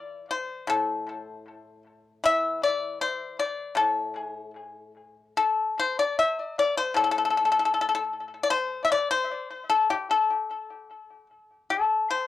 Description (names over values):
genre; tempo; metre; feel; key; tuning
chinese traditional, Chinese solo plucked strings; 76 BPM; 2/4; rubato; A yu mode; A4 = 435 Hz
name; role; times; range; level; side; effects
pipa; solo; 0.0-12.3 s; A2 to E5; -24 LUFS; left 4 dB; cassette tape, analog delay
room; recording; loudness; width
light reverb; home recording on cassette; -23 LUFS; side -13 dB against mid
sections
0.0-5.4 A section; 5.4-12.3 B section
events
none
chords
none